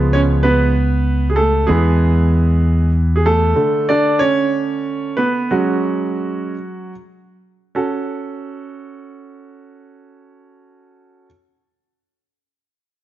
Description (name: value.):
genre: pop.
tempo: 48-64 BPM (dotted quarters).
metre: 6/8.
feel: straight.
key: F# minor.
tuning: A4 = 440 Hz.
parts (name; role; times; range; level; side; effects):
bright grand piano; accompaniment; 0.0-11.3 s; D3 to D5; -17 LUFS; right 2 dB; none.
fingered electric bass; bass; 0.0-3.5 s; C#2 to E2; -15 LUFS; left 1 dB; none.
room: light reverb, small room reverb.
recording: nothing above 7.5 kHz.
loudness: -14 LUFS.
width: side -13 dB against mid.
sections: 0.0-7.8 A section; 7.8-12.8 B section.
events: grand piano solo 0.0-7.8; slowing down 3.6-7.8.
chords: 0.0 C#7; 1.7 E; 3.6 Bm7/D; 5.5 F#sus2; 7.8 F#m.